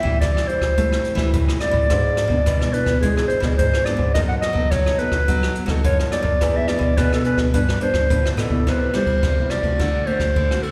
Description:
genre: samba and choro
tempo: 106 BPM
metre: 4/4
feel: straight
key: unclear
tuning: A4 = 440 Hz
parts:
  - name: warm clarinet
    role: melody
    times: 0.0-10.7 s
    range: G#4 to F#5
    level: -24 LUFS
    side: equal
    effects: slapback echo
  - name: nylon-string guitar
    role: accompaniment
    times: 0.0-10.7 s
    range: G2 to A4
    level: -30 LUFS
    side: equal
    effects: slapback echo
  - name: nylon-string guitar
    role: bass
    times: 0.0-10.7 s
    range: E2 to A3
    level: -26 LUFS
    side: equal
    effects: none
  - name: jazz brush drum kit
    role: drums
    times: 0.1-10.7 s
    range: hi-hat, kick drum, ride cymbal, rim click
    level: -23 LUFS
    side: equal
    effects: none
room: small room ambience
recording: live gig heard through the venue's PA, recital hall reverb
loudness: -19 LUFS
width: mono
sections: 0.0-8.7 A section; 8.7-10.7 B section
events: none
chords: 0.0 Am7; 1.9 E7/G#; 4.2 B7/F#; 6.4 E7; 7.5 G7; 8.7 Cmaj7; 9.8 D7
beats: 0.21 0.77 1.34 | 1.90 2.47 3.03 3.59 | 4.16 4.72 5.29 5.85 | 6.41 6.98 7.54 8.10 | 8.67 9.23 9.79 10.36

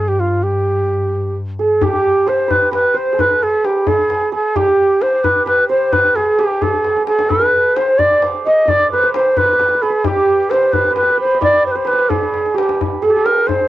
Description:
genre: Persian modal ensemble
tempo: 88 BPM (dotted quarters)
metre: 6/8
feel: straight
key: G dastgah homayun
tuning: A4 = 440 Hz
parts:
  - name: breathy ney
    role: melody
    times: 0.0-13.7 s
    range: F4 to Eb5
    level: -13 LUFS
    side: equal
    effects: cassette tape
  - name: dark double bass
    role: drone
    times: 0.0-1.9 s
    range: G2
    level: -21 LUFS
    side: left 1 dB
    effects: cassette tape
  - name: santur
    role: second line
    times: 1.6-13.7 s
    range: G4 to Eb5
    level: -20 LUFS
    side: right 5 dB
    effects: cassette tape
  - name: tombak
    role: percussion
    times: 1.8-13.6 s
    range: none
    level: -23 LUFS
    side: left 6 dB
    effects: none
room: moderate booth ambience, RT60 0.2 s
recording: home recording on cassette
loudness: -12 LUFS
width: side -14 dB against mid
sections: 0.0-1.8 A section; 1.8-12.8 B section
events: drum fill 6.8-7.3, 12.3-12.8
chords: none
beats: | 0.44 1.13 | 1.81 2.50 | 3.19 3.88 | 4.56 5.25 | 5.93 6.62 | 7.31 7.99 | 8.68 9.36 | 10.05 10.73 | 11.42 12.10 | 12.79 13.47

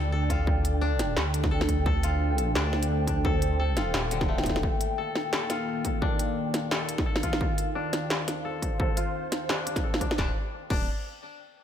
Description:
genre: half-time drum and bass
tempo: 173 BPM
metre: 4/4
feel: swing 56% on 16ths, half-time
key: D phrygian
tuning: A4 = 441 Hz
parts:
  - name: dark analog pad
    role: sustained chords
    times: 0.0-10.3 s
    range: Eb3 to F5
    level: -34 LUFS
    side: equal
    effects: chorus, sidechain pumping
  - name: koto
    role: arpeggios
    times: 0.0-10.9 s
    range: D3 to A4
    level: -34 LUFS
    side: left 4 dB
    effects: low-pass filter, ping-pong delay
  - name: dark detuned saw bass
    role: bass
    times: 0.0-4.6, 10.2-10.9 s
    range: D1 to D2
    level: -27 LUFS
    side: equal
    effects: tube saturation
  - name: pulsing gated texture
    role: texture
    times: 0.0-10.2 s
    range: G5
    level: -37 LUFS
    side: left 2 dB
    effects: chorus, built-in reverb
  - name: electronic kick drum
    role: drums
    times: 0.3-10.8 s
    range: none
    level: -28 LUFS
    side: equal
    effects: distortion
  - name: industrial drum kit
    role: drums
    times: 0.3-10.8 s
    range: crash cymbal, hi-hat, snare drum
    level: -31 LUFS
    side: equal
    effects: none
room: light reverb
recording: none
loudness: -25 LUFS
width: side -9 dB against mid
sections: 0.0-10.2 A section; 10.2-11.6 B section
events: filter sweep on koto 0.0-10.2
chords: 0.0 Dm; 4.6 Eb; 10.2 D5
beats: 0.13 | 0.47 0.82 1.17 1.51 | 1.86 2.21 2.55 2.90 | 3.25 3.60 3.94 4.29 | 4.63 4.98 5.33 5.68 | 6.02 6.37 6.72 7.06 | 7.41 7.76 8.10 8.45 | 8.80 9.14 9.49 9.84 | 10.18 10.53

